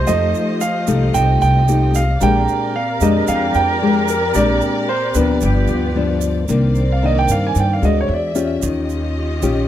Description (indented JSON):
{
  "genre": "bossa nova",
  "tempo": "112 BPM",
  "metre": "4/4",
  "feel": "straight",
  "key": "C minor",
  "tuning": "A4 = 440 Hz",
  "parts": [
    { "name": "warm concert grand piano", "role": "melody", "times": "0.0-8.6 s", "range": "Bb4 to Ab5", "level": "-20 LUFS", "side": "right 4 dB", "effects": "none" },
    { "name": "mellow flute section", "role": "second line", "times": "0.0-6.2 s", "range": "G4 to C5", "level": "-25 LUFS", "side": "right 2 dB", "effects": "none" },
    { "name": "nylon-string guitar", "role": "accompaniment", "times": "0.0-9.7 s", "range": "G2 to G4", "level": "-19 LUFS", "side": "left 4 dB", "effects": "none" },
    { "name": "vibraphone with medium hard mallets", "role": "accompaniment", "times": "0.0-8.3 s", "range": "C5 to Bb5", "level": "-30 LUFS", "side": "right 6 dB", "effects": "none" },
    { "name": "warm symphonic string section", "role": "sustained chords", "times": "0.0-9.7 s", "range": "A3 to E5", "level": "-26 LUFS", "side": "equal", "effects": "none" },
    { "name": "upright bass", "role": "bass", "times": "0.0-9.7 s", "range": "G1 to G2", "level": "-18 LUFS", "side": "equal", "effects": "none" },
    { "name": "egg shaker", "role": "percussion", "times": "0.1-9.7 s", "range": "none", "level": "-30 LUFS", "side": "right 22 dB", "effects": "none" }
  ],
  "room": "light reverb",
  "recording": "dry, close 1970s-style studio recording",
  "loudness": "-14 LUFS",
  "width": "side -11 dB against mid",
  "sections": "0.0-6.5 A section; 6.5-9.7 B section",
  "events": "grand piano solo 6.5-9.7",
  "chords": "0.0 F9; 2.2 Bb13; 5.4 G7; 6.5 Cm9; 8.1 E9; 8.6 Eb9"
}